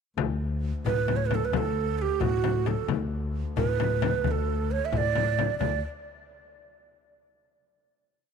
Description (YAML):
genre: Persian modal ensemble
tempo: 88 BPM (dotted quarters)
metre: 6/8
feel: straight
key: D dastgah mahur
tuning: A4 = 439 Hz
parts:
  - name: tine electric piano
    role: bass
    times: 0.2-5.8 s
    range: D2 to A2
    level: -29 LUFS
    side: left 2 dB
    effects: fast stereo tremolo
  - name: warm double bass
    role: drone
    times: 0.2-5.7 s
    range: D2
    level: -38 LUFS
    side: left 2 dB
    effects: stereo widening
  - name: frame drum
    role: percussion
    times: 0.2-5.8 s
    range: none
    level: -30 LUFS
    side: left 11 dB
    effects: none
  - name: breathy mellow ney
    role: melody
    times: 0.9-5.8 s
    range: F#4 to E5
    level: -28 LUFS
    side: right 11 dB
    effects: none
room: light reverb, small room ambience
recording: 1960s-style stereo with parts hard left and right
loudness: -25 LUFS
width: side -6 dB against mid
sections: 0.2-5.6 A section; 5.6-7.0 final note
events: none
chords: none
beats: | 0.18 0.86 | 1.53 2.21 | 2.89 3.57 | 4.25 4.93 | 5.61